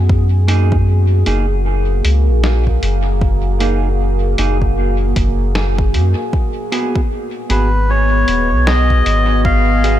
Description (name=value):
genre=ambient dub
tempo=77 BPM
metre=4/4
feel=swing 60% on 16ths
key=unclear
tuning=A4 = 440 Hz
part: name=deep dark ambient pad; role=sustained chords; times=0.0-10.0 s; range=A#3 to D#5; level=-21 LUFS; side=left 1 dB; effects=chorus, built-in reverb
part: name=soft dub sub bass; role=bass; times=0.0-10.0 s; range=D#1 to F#2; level=-14 LUFS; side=equal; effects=tube saturation
part: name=electronic kick drum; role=drums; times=0.1-9.6 s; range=none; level=-17 LUFS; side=equal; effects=overdrive, small room reverb
part: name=mellow electric guitar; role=stabs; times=0.5-10.0 s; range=A#3 to G#4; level=-24 LUFS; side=right 4 dB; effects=dub echo
part: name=lo-fi sampler-style drum kit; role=drums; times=0.5-10.0 s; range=hi-hat, snare drum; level=-24 LUFS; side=equal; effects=small room reverb, dub echo
part: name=melodica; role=melody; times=7.5-10.0 s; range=B4 to E#5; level=-16 LUFS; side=equal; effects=vintage 12-bit sampler grit, dub echo
room=digital ambience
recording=none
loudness=-12 LUFS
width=side -12 dB against mid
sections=0.0-10.0 A section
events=none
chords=0.1 F#69; 6.3 G#m7